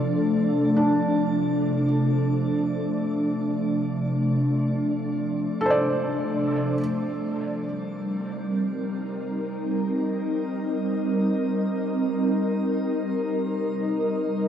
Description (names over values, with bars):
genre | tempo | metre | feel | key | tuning
ambient | free time | none | none | C dorian | A4 = 439 Hz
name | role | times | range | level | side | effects
glassy FM pad | sustained chords | 0.0-14.5 s | C3 to Eb5 | -23 LUFS | equal | ensemble chorus, built-in reverb, phaser, shimmer reverb
felt-muted upright piano | arpeggios | 0.0-6.8 s | D4 to D5 | -28 LUFS | equal | tape echo, shimmer reverb
room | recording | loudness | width
wet cathedral reverb, RT60 6.1 s | none | -22 LUFS | side -9 dB against mid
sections
0.0-6.8 A section; 6.8-14.5 B section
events
none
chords
0.0 Dm/C; 6.8 Cm7; 13.5 Eb/C